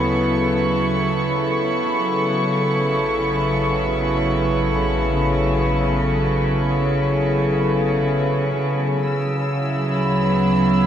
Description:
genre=ambient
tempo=free time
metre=none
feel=none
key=unclear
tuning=A4 = 442 Hz
part: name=rich chamber string section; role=sustained chords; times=0.0-10.9 s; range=C#3 to A4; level=-18 LUFS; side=equal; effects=none
part: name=deep rumbling drone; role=bass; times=0.0-10.9 s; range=A1 to D2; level=-29 LUFS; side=equal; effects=built-in reverb
part: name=warm studio violin section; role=texture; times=0.0-10.9 s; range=C#6 to E6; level=-28 LUFS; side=right 1 dB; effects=none
room=wet huge ambient reverb, RT60 7.3 s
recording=in a vast, echoing space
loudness=-17 LUFS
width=side -9 dB against mid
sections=0.0-10.9 A section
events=fade-out on synth drone 0.0-10.9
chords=0.0 Dmaj13; 1.9 Aadd9; 9.0 Dmaj9

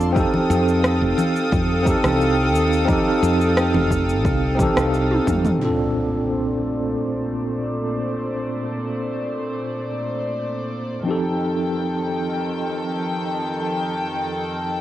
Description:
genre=sunset chillout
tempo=88 BPM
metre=4/4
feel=straight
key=Bb major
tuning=A4 = 441 Hz
part: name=tine electric piano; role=accompaniment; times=0.0-14.8 s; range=Bb2 to A4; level=-22 LUFS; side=equal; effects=medium stereo tremolo, auto-pan, cassette tape, analog delay
part: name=rich studio string section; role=sustained chords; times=0.0-14.8 s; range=F2 to Eb6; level=-26 LUFS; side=equal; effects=low-pass filter, cassette tape
part: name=woody fretless electric bass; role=bass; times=0.0-5.5 s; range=F1 to F2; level=-22 LUFS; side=equal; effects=none
part: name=deep house drum kit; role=drums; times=0.0-5.6 s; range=cabasa, congas, rim click, toms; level=-24 LUFS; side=equal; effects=overdrive, cassette tape
part: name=electronic kick drum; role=drums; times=0.2-5.4 s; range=none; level=-24 LUFS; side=equal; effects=overdrive, cassette tape
part: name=impact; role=sound effects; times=5.6-8.3 s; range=none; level=-33 LUFS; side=equal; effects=none
room=light reverb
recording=home recording on cassette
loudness=-19 LUFS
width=side -13 dB against mid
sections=0.0-5.6 A section; 5.6-14.8 B section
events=drum fill 5.1-5.6; impact 5.6-8.3; filter sweep on string section 5.6-14.8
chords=0.2 F9; 5.6 Bbmaj9; 11.1 F9

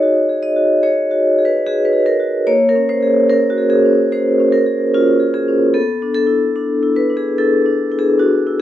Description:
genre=classical, contemporary piece for solo vibraphone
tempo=73 BPM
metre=4/4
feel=rubato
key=unclear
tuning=A4 = 440 Hz
part: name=vibraphone with medium hard mallets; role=solo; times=0.0-8.6 s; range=Bb3 to Eb5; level=-13 LUFS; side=equal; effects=none
room=moderate studio ambience, RT60 0.5 s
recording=worn, warbling old tape, cassette tape, warbly pitch drift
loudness=-13 LUFS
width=side -12 dB against mid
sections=0.0-8.6 A section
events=none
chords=0.0 Ebm7; 2.5 Bbm7; 5.7 Bm7

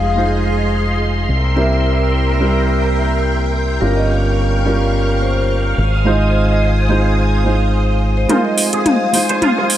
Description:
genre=nu-disco, nu disco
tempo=107 BPM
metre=4/4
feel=swing 55% on 16ths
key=F minor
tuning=A4 = 441 Hz
part: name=vibraphone with medium mallets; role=melody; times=0.0-9.1 s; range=Bb4 to F5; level=-24 LUFS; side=left 1 dB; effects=tape echo
part: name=dark baby grand piano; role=accompaniment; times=0.0-9.8 s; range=G3 to C5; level=-19 LUFS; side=right 2 dB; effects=low-pass filter, slapback echo
part: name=string machine, full ensemble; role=sustained chords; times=0.0-9.8 s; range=Ab4 to Eb6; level=-21 LUFS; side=equal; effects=ensemble chorus
part: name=fingered electric bass with an envelope filter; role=bass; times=0.0-9.7 s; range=F1 to Eb2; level=-17 LUFS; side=equal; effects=tube saturation, high-pass filter
part: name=twangy electric guitar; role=riff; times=8.3-9.6 s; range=F4 to C5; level=-21 LUFS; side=right 3 dB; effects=ensemble chorus, low-pass filter, slapback echo
part: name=house drum kit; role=drums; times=8.3-9.8 s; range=hi-hat, toms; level=-16 LUFS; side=left 1 dB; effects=studio reverb
room=light reverb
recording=none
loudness=-13 LUFS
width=side -12 dB against mid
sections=0.0-8.3 A section; 8.3-9.8 B section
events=build-up 8.3-9.8; drum fill 8.3-9.8; filter sweep on clean electric guitar 8.3-9.8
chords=0.0 Fm7; 1.3 C7; 3.8 Gm7b5; 5.8 Ab6; 8.3 Fm7

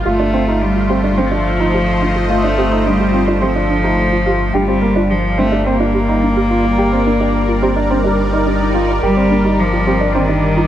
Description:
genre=electronica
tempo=107 BPM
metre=4/4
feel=straight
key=G minor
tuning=A4 = 441 Hz
part: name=lush unison pad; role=sustained chords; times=0.0-10.7 s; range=G3 to Eb5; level=-20 LUFS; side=equal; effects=chorus, phaser
part: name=round analog bass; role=bass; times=0.0-10.7 s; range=G1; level=-20 LUFS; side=equal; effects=tube saturation
part: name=rich cello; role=melody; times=0.1-10.7 s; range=Eb3 to Bb3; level=-17 LUFS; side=left 1 dB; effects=none
part: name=soft round pluck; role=arpeggios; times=0.1-10.7 s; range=D4 to G5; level=-23 LUFS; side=right 2 dB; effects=wide subtle chorus, tape echo
part: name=warm upright piano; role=riff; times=0.1-10.7 s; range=Bb3 to G4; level=-19 LUFS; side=right 2 dB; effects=low-pass filter, tape echo
part: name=swell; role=sound effects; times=8.2-9.0 s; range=none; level=-27 LUFS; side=left 2 dB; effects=none
room=light reverb, small room ambience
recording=none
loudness=-12 LUFS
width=side -11 dB against mid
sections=0.0-10.7 A section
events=filter sweep on synth arpeggio sound 0.0-10.7; swell 8.2-9.0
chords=0.1 F7/G; 4.5 Gm7

